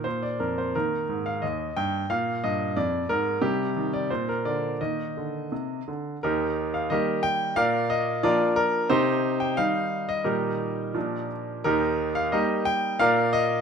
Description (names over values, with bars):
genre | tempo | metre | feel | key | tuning
classical-period piano sonatina | 89 BPM | 2/4 | rubato | Eb major | A4 = 439 Hz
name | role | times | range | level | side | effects
bright grand piano | solo | 0.0-13.6 s | Eb2 to G5 | -23 LUFS | equal | none
room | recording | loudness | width
moderate recital hall reverb, RT60 1.6 s | close, detailed microphones | -23 LUFS | side -6 dB against mid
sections
0.0-6.2 A section; 6.2-13.6 B section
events
none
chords
0.1 Bb5; 0.7 Eb; 2.1 Bb5; 3.4 Cm; 4.1 Bb; 4.8 Eb5; 6.2 Eb; 7.6 Bb; 8.9 Cm; 10.3 Eb/Bb; 11.0 Bb; 11.6 Eb; 13.0 Bb